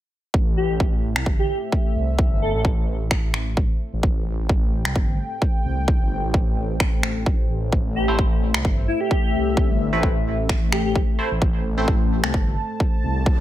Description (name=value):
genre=bass house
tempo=130 BPM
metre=4/4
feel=swing 55% on 16ths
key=A minor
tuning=A4 = 440 Hz
part: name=sweeping resonant pad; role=sustained chords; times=0.3-13.4 s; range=A3 to A5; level=-29 LUFS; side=left 3 dB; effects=chorus, sidechain pumping
part: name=phased detuned saw bass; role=bass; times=0.3-13.4 s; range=G1 to C2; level=-25 LUFS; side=equal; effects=phaser, overdrive, sidechain pumping
part: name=electronic kick drum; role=drums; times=0.3-13.4 s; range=none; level=-20 LUFS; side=equal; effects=overdrive
part: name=airy dreamy lead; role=melody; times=0.6-2.6, 8.0-10.9 s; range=E4 to A4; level=-27 LUFS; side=equal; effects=chorus, tape echo
part: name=electronic finger snaps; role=drums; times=1.2-12.3 s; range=none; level=-24 LUFS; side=equal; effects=overdrive
part: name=band-passed chord stab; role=stabs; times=8.1-11.9 s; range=A3 to C5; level=-27 LUFS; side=right 2 dB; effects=phaser, cassette tape, sidechain pumping, tape echo
part: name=noise sweep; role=sound effects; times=13.3-13.4 s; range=none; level=-38 LUFS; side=left 2 dB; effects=none
room=little or no reverb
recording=none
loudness=-19 LUFS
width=side -13 dB against mid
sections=0.3-13.4 A section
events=filter sweep on analog synth pad 0.3-13.4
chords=0.3 Am